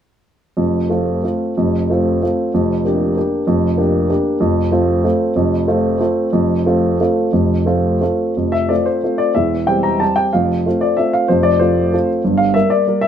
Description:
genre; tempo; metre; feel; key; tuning
classical, piano waltz; 160-201 BPM; 3/4; rubato; F major; A4 = 442 Hz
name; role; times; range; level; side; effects
warm upright piano; solo; 0.6-13.1 s; E1 to Bb5; -14 LUFS; equal; none
room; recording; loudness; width
moderate stone room reverb, RT60 1.3 s; minimal, uncompressed stereo recording; -14 LUFS; side -9 dB against mid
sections
0.6-8.4 A section; 8.4-13.1 B section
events
none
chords
0.6 F; 2.5 Gm7/F; 4.4 F; 9.4 C/E; 10.3 F; 12.2 Gm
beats
| 0.57 0.90 1.24 | 1.57 1.90 2.22 | 2.54 2.85 3.17 | 3.47 3.78 4.10 | 4.41 4.72 5.05 | 5.36 5.67 6.00 | 6.32 6.66 7.00 | 7.33 7.66 8.01 | 8.37 8.70 9.04 | 9.36 9.68 10.02 | 10.34 10.66 10.98 | 11.29 11.61 11.93 | 12.24 12.55 12.87

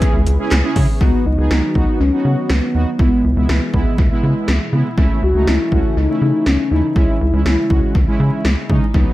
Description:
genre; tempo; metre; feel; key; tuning
synth-pop; 121 BPM; 4/4; straight; C# minor; A4 = 440 Hz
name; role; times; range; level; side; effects
mellow horn-like synth lead; melody; 0.0-8.2 s; B3 to B4; -20 LUFS; left 2 dB; chorus, dub echo
analog synth brass; accompaniment; 0.0-9.1 s; F#3 to G#4; -22 LUFS; right 2 dB; chorus
lush unison pad; sustained chords; 0.0-9.1 s; B2 to F#4; -26 LUFS; equal; chorus
80s electronic pad drums; drums; 0.0-9.1 s; handclaps, hi-hat, kick drum, snare drum; -18 LUFS; equal; none
rubbery square bass; bass; 0.1-9.1 s; C#2 to C#3; -16 LUFS; equal; none
room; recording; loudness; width
light reverb, digital ambience; echo-heavy mix, vinyl crackle; -13 LUFS; side -16 dB against mid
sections
0.0-1.0 A section; 1.0-9.1 B section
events
none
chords
0.0 C#m7; 1.0 B/C#; 3.0 E/C#; 5.0 A/C#; 7.0 C#m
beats
0.02 0.51 | 1.01 1.50 2.00 2.50 | 2.99 3.49 3.98 4.48 | 4.98 5.47 5.97 6.46 | 6.96 7.46 7.95 8.45 | 8.94

